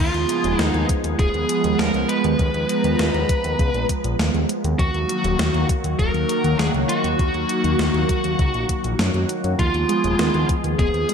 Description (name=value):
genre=synthwave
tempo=100 BPM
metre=4/4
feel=straight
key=unclear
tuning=A4 = 439 Hz
part: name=high-gain lead guitar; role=melody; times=0.0-11.1 s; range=F4 to Cb5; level=-24 LUFS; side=equal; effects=distortion, analog delay
part: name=phased analog pad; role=sustained chords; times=0.0-11.1 s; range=Eb3 to Bb5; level=-23 LUFS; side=right 1 dB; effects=phaser, chorus, sidechain pumping
part: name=fat analog bass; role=bass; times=0.0-11.1 s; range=Eb1 to Gb2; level=-23 LUFS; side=left 1 dB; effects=tube saturation, sidechain pumping
part: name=gated 80s digital drum machine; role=drums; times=0.1-11.1 s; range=hi-hat, snare drum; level=-27 LUFS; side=equal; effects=gated reverb, gated reverb snare
part: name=electronic kick drum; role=drums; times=0.9-10.9 s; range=none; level=-22 LUFS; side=left 1 dB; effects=none
part: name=soft round pluck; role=arpeggios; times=9.6-11.1 s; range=F3 to Cb4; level=-28 LUFS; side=right 3 dB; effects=chorus, ping-pong delay
room=moderate plate reverb, RT60 1.6 s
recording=dreamy mix soaked in reverb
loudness=-18 LUFS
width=side -6 dB against mid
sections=0.0-11.1 A section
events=none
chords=0.0 Fdim/Eb; 4.8 Ebm; 9.6 Fdim/Eb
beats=0.59 1.19 1.79 | 2.39 2.99 3.59 4.19 | 4.79 5.39 5.99 6.59 | 7.19 7.79 8.39 8.99 | 9.59 10.19 10.79